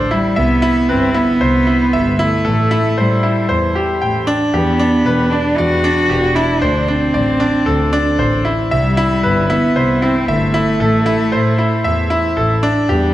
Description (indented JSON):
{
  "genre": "piano and strings electronica",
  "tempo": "115 BPM",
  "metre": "4/4",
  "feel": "straight",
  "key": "unclear",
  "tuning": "A4 = 440 Hz",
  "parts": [
    { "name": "bright concert grand piano", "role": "riff", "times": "0.0-13.1 s", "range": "D4 to G5", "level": "-16 LUFS", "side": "equal", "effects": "shimmer reverb, digital delay" },
    { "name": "dark cello", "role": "melody", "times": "0.1-13.1 s", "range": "G3 to F#4", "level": "-17 LUFS", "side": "right 1 dB", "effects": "none" },
    { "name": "rich studio double bass section", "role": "bass", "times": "0.4-13.1 s", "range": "E1 to A2", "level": "-18 LUFS", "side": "left 1 dB", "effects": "none" }
  ],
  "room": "moderate recital hall reverb, RT60 1.8 s, small room ambience",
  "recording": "none",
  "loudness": "-12 LUFS",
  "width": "side -14 dB against mid",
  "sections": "0.0-13.1 A section",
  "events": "none",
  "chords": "0.1 Cmaj7; 2.2 Am7; 4.3 Em7; 6.4 D5; 8.5 Cmaj7; 10.5 Am; 12.6 Em7",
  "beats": "| 0.11 0.63 1.15 1.68 | 2.20 2.72 3.24 3.76 | 4.28 4.81 5.33 5.85 | 6.37 6.89 7.42 7.94 | 8.46 8.98 9.50 10.02 | 10.54 11.07 11.59 12.11 | 12.63"
}